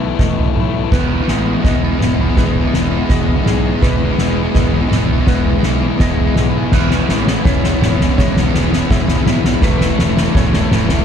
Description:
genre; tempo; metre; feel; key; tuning
post-rock; 83 BPM; 4/4; straight; E major; A4 = 443 Hz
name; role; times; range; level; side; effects
rich studio string section; sustained chords; 0.0-11.0 s; G#3 to D#5; -29 LUFS; equal; none
electric guitar through a small old amp; arpeggios; 0.0-11.0 s; E2 to G#4; -24 LUFS; left 3 dB; phaser, tape echo
mellow electric guitar; arpeggios; 0.0-11.0 s; B4 to E5; -29 LUFS; right 4 dB; analog chorus, tape echo
distorted electric guitar; riff; 0.0-11.0 s; E3 to B3; -20 LUFS; left 12 dB; distortion
fuzz picked electric bass; bass; 0.0-11.0 s; E1 to B1; -20 LUFS; equal; overdrive
soft-mallet drum kit; drums; 0.2-11.0 s; crash cymbal, kick drum, snare drum, toms; -16 LUFS; right 1 dB; none
crunchy overdriven guitar; riff; 0.9-11.0 s; E3 to B3; -22 LUFS; right 14 dB; none
room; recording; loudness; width
small room reverb; dark, warm production; -12 LUFS; side -8 dB against mid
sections
0.0-11.0 A section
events
build-up 0.0-11.0; drum fill 0.0-11.0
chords
0.0 Asus2/E; 0.9 Emaj7; 6.7 C#m7/E; 9.6 Asus2/E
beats
0.19 | 0.92 1.65 2.38 3.10 | 3.83 4.55 5.28 6.00 | 6.73 7.46 8.18 8.90 | 9.63 10.35

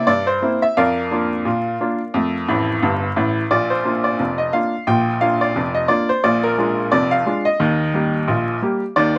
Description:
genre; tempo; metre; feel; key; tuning
ragtime piano; 88 BPM; 2/4; swing 57% on 16ths; Bb major; A4 = 438 Hz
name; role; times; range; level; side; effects
bright upright piano; solo; 0.0-9.2 s; F1 to G5; -16 LUFS; equal; none
room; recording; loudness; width
little or no reverb; recorded outdoors, with no room sound, vinyl crackle; -16 LUFS; side -33 dB against mid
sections
0.0-3.5 A section; 3.5-9.2 B section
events
upright piano fill 2.5-3.5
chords
0.0 C7; 0.8 Bb/F; 2.1 F; 3.5 Bb; 6.2 Bb7; 7.6 Eb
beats
0.08 | 0.77 1.46 | 2.14 2.83 | 3.52 4.20 | 4.88 5.56 | 6.24 6.92 | 7.60 8.28 | 8.96

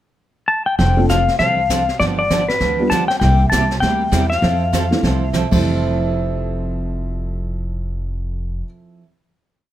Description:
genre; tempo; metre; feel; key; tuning
country, western swing; 198 BPM; 4/4; swing 62% on 8ths; F major; A4 = 440 Hz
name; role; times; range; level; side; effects
clean lap steel guitar; melody; 0.5-5.3 s; B4 to A5; -18 LUFS; left 2 dB; none
picked steel-string acoustic guitar; accompaniment; 0.8-9.1 s; C3 to A4; -23 LUFS; right 4 dB; none
upright bass; bass; 0.8-8.6 s; F1 to F2; -20 LUFS; equal; none
jazz brush drum kit; drums; 0.8-5.6 s; brushed snare drum, crash cymbal, hi-hat, kick drum, snare drum; -24 LUFS; equal; none
honky-tonk upright piano; accompaniment; 1.0-8.7 s; F2 to F4; -23 LUFS; equal; none
room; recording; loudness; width
light reverb; none; -15 LUFS; side -12 dB against mid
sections
0.0-0.8 pickup bar; 0.8-5.6 A section; 5.6-8.1 final hit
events
none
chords
0.0 N.C.; 0.8 F6; 2.0 G7; 3.2 C7; 4.4 Fmaj7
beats
0.18 0.48 | 0.79 1.09 1.40 1.70 | 2.00 2.30 2.61 2.91 | 3.21 3.52 3.82 4.12 | 4.42 4.73 5.03 5.34 | 5.64 5.95 6.25 6.56 | 6.86 7.17 7.47 7.78

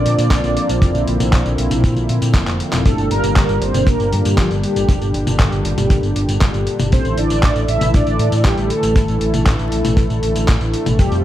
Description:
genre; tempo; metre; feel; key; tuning
italo disco; 118 BPM; 4/4; straight; unclear; A4 = 442 Hz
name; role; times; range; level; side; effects
mellow synth brass; melody; 0.0-11.2 s; F3 to E5; -21 LUFS; right 1 dB; chorus, digital delay
warm analog pad; sustained chords; 0.0-11.2 s; Bb2 to A4; -20 LUFS; equal; chorus
overdriven fingered electric bass; bass; 0.0-11.2 s; F1 to Bb2; -19 LUFS; equal; tube saturation
dusty soul sampler-style drum kit; drums; 0.1-11.2 s; handclaps, hi-hat, tambourine, toms; -23 LUFS; left 1 dB; overdrive
kick drum; drums; 0.3-11.1 s; none; -14 LUFS; equal; none
room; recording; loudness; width
light reverb, digital ambience; dark, warm production, vinyl crackle; -14 LUFS; side -12 dB against mid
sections
0.0-11.2 A section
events
drum fill 2.5-2.9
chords
0.0 Bbadd9; 2.9 Gm; 6.9 Asus4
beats
0.31 | 0.82 1.33 1.84 2.35 | 2.85 3.36 3.87 4.38 | 4.89 5.40 5.91 6.41 | 6.92 7.43 7.94 8.45 | 8.96 9.46 9.97 10.48 | 10.99

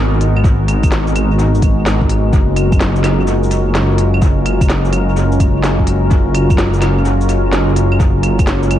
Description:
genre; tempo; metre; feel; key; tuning
future garage; 127 BPM; 4/4; swing 66% on 16ths; unclear; A4 = 440 Hz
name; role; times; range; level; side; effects
deep dark ambient pad; sustained chords; 0.0-8.8 s; G#3 to A#4; -18 LUFS; equal; chorus, built-in reverb, sidechain pumping
dark detuned saw bass; bass; 0.0-8.8 s; F#1 to G#1; -14 LUFS; equal; sidechain pumping
organic electronic drum kit; drums; 0.2-8.8 s; claves, hi-hat, shaker, snare drum; -21 LUFS; equal; vintage 12-bit sampler grit, dub echo
electronic kick drum; drums; 0.4-8.5 s; none; -14 LUFS; equal; vintage 12-bit sampler grit
room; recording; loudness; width
digital ambience; echo-heavy mix, cassette tape; -11 LUFS; side -11 dB against mid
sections
0.0-8.8 A section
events
none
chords
0.0 G#m9; 2.3 F#maj9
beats
| 0.44 0.91 1.39 1.86 | 2.33 2.80 3.27 3.75 | 4.22 4.69 5.17 5.64 | 6.11 6.58 7.05 7.53 | 8.00 8.47

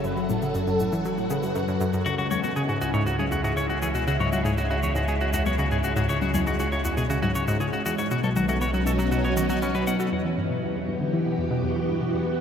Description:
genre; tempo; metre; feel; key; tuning
ambient, sequencer-driven space music; 119 BPM; 4/4; straight; unclear; A4 = 443 Hz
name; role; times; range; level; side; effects
mellow horn-like synth lead; melody; 0.0-2.1 s; A4 to B4; -32 LUFS; equal; phaser, ensemble chorus, ping-pong delay
phased string machine; sustained chords; 0.0-12.4 s; B2 to A4; -27 LUFS; equal; ensemble chorus, phaser
analog pluck; riff; 0.0-12.4 s; C#2 to F#4; -28 LUFS; equal; chorus, vintage 12-bit sampler grit, ping-pong delay
round analog bass; bass; 0.0-12.4 s; F#1 to E2; -31 LUFS; equal; none
electronic shaker and toms; percussion; 0.0-10.1 s; none; -34 LUFS; left 4 dB; overdrive, ping-pong delay
clean electric guitar; arpeggios; 2.1-10.1 s; C#4 to F#5; -29 LUFS; left 2 dB; auto-pan, ping-pong delay
room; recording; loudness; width
wet huge ambient reverb, RT60 8.2 s; dreamy mix soaked in reverb; -22 LUFS; side -8 dB against mid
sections
0.0-10.1 A section; 10.1-12.4 B section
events
fade-in on analog synth bass 0.0-10.1; fade-in on drum 0.0-10.1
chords
0.0 F#m; 2.1 C#m; 8.1 B7; 10.1 Em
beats
| 0.04 0.55 1.05 1.55 | 2.06 2.56 3.07 3.57 | 4.08 4.58 5.08 5.59 | 6.09 6.60 7.10 7.60 | 8.11 8.61 9.12 9.62 | 10.12 10.63 11.13 11.64 | 12.14

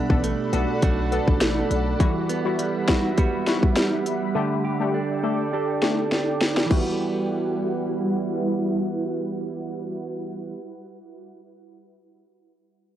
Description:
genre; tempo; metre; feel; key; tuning
dancehall; 102 BPM; 4/4; straight; E minor; A4 = 440 Hz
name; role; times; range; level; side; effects
synth brass stab; accompaniment; 0.0-10.5 s; G3 to A4; -28 LUFS; left 6 dB; chorus, low-pass filter
granular cloud pad; sustained chords; 0.0-9.8 s; G3 to D6; -28 LUFS; equal; built-in reverb, sidechain pumping, low-pass filter
direct-recorded clean electric guitar; arpeggios; 0.0-10.6 s; B2 to A4; -27 LUFS; right 6 dB; low-pass filter
hard-hitting 808-style bass; bass; 0.1-1.9 s; A1 to B1; -26 LUFS; left 1 dB; none
island pop drum kit; drums; 0.1-6.9 s; crash cymbal, hi-hat, kick drum, snare drum; -22 LUFS; left 1 dB; overdrive, cassette tape
room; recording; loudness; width
moderate booth ambience, RT60 0.2 s; home recording on cassette; -21 LUFS; side -11 dB against mid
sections
0.0-6.7 A section; 6.7-9.1 B section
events
filter sweep 0.0-6.7; drum fill 6.1-6.7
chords
0.0 Bm7; 2.0 Emadd9; 4.4 Dsus4; 6.7 Emadd9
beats
0.24 0.82 1.41 | 2.00 2.59 3.18 3.77 | 4.35 4.94 5.53 6.12 | 6.71 7.29 7.88 8.47

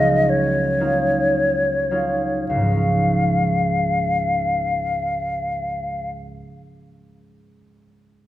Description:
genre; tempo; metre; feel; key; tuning
classical, impressionist duo for flute and harp; 49-66 BPM; 3/4; rubato; Db major; A4 = 440 Hz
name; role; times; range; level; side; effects
mellow hollow silver concert flute; melody; 0.0-6.1 s; Db5 to F5; -20 LUFS; left 2 dB; none
concert harp; accompaniment; 0.0-6.5 s; Db2 to F4; -22 LUFS; right 2 dB; none
room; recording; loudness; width
moderate recital hall reverb, RT60 1.7 s; none; -18 LUFS; side -14 dB against mid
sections
0.0-2.5 A section; 2.5-8.3 B section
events
slowing down 0.0-2.5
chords
0.0 Ebm9/Db; 2.5 Dbadd9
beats
0.29 1.32 | 2.49 3.65 4.84 | 6.01

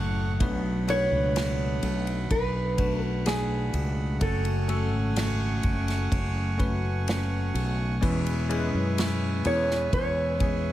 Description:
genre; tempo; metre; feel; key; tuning
pop ballad; 63 BPM; 4/4; straight; F# minor; A4 = 440 Hz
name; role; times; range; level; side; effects
bell-like tine electric piano; accompaniment; 0.0-10.7 s; B2 to B4; -32 LUFS; left 3 dB; analog chorus
accordion; sustained chords; 0.0-10.7 s; A3 to F#6; -36 LUFS; right 4 dB; none
fingerpicked steel-string acoustic guitar; arpeggios; 0.0-10.7 s; F#2 to A4; -37 LUFS; right 5 dB; none
fretless electric bass; bass; 0.0-10.7 s; F#1 to F#2; -28 LUFS; equal; none
unplugged drum kit; drums; 0.4-10.6 s; kick drum, ride cymbal, snare drum; -32 LUFS; equal; none
nylon-string guitar; melody; 0.9-10.7 s; G#4 to C#5; -29 LUFS; right 1 dB; none
room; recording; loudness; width
studio ambience; none; -24 LUFS; side -14 dB against mid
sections
0.0-10.7 A section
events
none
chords
0.4 Bm7; 4.2 F#madd9; 8.0 E6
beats
| 0.41 1.36 2.31 3.26 | 4.21 5.17 6.12 7.07 | 8.02 8.98 9.93

